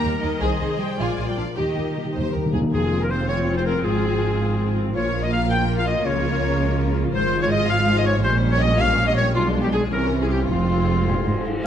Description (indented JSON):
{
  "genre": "classical",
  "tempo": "107 BPM (dotted quarters)",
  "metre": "6/8",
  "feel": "uneven beats",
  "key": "F minor",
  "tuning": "A4 = 441 Hz",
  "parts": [
    { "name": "warm symphonic violin section", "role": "melody", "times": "0.0-11.4 s", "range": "F4 to Bb5", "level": "-34 LUFS", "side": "left 4 dB", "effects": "none" },
    { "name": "warm symphonic violin section", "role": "second line", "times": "0.0-11.4 s", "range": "D4 to G5", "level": "-30 LUFS", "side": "left 1 dB", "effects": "none" },
    { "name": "rich symphonic viola section", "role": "accompaniment", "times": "0.0-11.4 s", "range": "E3 to Bb4", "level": "-27 LUFS", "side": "equal", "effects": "none" },
    { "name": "concert harp", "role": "arpeggios", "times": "0.0-11.7 s", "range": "Ab2 to Ab5", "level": "-29 LUFS", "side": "left 10 dB", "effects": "none" },
    { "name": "rich symphonic cello section", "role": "bass", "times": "0.0-11.5 s", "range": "F2 to Bb3", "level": "-26 LUFS", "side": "right 2 dB", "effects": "none" },
    { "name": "warm studio double bass section", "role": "bass", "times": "0.0-11.5 s", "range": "F1 to Eb2", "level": "-25 LUFS", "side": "right 2 dB", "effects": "none" },
    { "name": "timpani", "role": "percussion", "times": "1.6-3.3 s", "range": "F2 to Eb3", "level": "-26 LUFS", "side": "left 1 dB", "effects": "none" },
    { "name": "bright clarinet", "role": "second line", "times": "2.7-11.5 s", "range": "F4 to G5", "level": "-24 LUFS", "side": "left 1 dB", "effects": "none" }
  ],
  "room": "light reverb",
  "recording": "close, detailed microphones",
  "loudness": "-19 LUFS",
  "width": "side -9 dB against mid",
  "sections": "0.0-2.7 A section; 2.7-11.7 B section",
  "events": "timpani fill 1.6-2.7",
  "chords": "0.4 Ab/C; 1.0 Bb7; 1.6 Eb; 2.7 Fm; 3.8 Fm/Ab; 4.9 Bb5; 6.0 Bbm/Db; 7.1 Fm/Ab; 8.2 Gdim/Bb; 9.4 Bdim7; 9.9 C7b9; 10.5 Fm",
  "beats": "| 0.42 0.99 | 1.57 2.15 | 2.73 3.29 | 3.84 4.39 | 4.95 5.50 | 6.05 6.60 | 7.15 7.70 | 8.25 8.80 | 9.36 9.93 | 10.50 11.08 | 11.66"
}